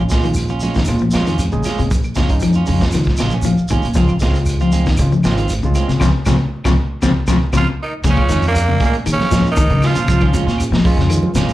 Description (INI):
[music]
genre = afrobeat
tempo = 117 BPM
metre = 4/4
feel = straight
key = Bb minor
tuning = A4 = 440 Hz
[part]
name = semi-hollow electric guitar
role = arpeggios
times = 0.0-11.5 s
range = C3 to F3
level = -20 LUFS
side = left 4 dB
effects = slapback echo
[part]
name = electric guitar at the edge of break-up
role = stabs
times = 0.0-11.5 s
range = Ab3 to F4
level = -24 LUFS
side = right 6 dB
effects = slapback echo
[part]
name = upright bass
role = bass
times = 0.0-11.5 s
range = Ab1 to Eb3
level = -18 LUFS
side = equal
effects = none
[part]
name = overdriven tine electric piano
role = accompaniment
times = 0.1-11.3 s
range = Ab3 to Ab5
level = -25 LUFS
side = right 3 dB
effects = slapback echo
[part]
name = crunchy breakbeat drum kit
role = drums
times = 0.1-11.5 s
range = crash cymbal, hi-hat, kick drum, snare drum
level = -20 LUFS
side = equal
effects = none
[part]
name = congas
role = percussion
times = 0.1-11.4 s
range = none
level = -26 LUFS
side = right 1 dB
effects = none
[part]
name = shekere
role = percussion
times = 0.1-11.5 s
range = none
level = -25 LUFS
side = right 1 dB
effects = none
[part]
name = claves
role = percussion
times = 0.4-11.5 s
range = none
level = -35 LUFS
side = left 1 dB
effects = slapback echo
[part]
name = raspy tenor saxophone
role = melody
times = 7.6-10.4 s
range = Bb3 to F4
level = -20 LUFS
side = right 3 dB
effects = slapback echo
[part]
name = raspy tenor saxophone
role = second line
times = 7.6-10.4 s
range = Bb2 to F3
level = -27 LUFS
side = right 2 dB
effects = slapback echo
[sound]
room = light reverb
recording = live gig heard through the venue's PA, club reverb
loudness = -13 LUFS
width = side -15 dB against mid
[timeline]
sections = 0.0-8.0 A section; 8.0-11.5 B section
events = tine electric piano fill 3.2-4.0, 7.0-8.0; band accent 6.0-8.0; drum fill 7.7-8.0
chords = 0.0 Bbm7; 4.0 Dbmaj7; 8.0 Bbm7